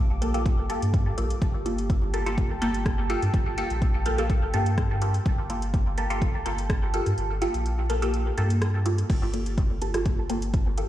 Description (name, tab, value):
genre	dub techno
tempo	125 BPM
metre	4/4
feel	straight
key	G minor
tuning	A4 = 440 Hz
part	deep dark ambient pad	sustained chords	0.0-9.1 s	G4 to D6	-36 LUFS	right 1 dB	chorus, built-in reverb, vintage 12-bit sampler grit, sidechain pumping
part	filtered dub chord stab	stabs	0.0-10.9 s	Bb3 to A4	-29 LUFS	equal	phaser, sidechain pumping, dub echo
part	soft dub sub bass	bass	0.0-10.8 s	G1 to G2	-28 LUFS	equal	sidechain pumping
part	soft vintage rhythm box	drums	0.2-10.9 s	crash cymbal, hi-hat, rim click	-38 LUFS	right 1 dB	none
part	electronic kick drum	drums	0.5-10.6 s	none	-25 LUFS	equal	overdrive
room	light reverb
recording	played on a big sound system in a bare room, large studio reverb, vinyl crackle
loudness	-23 LUFS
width	side -13 dB against mid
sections	0.0-9.1 A section; 9.1-10.9 A section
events	kick drops out 7.2-9.1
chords	0.0 Gm9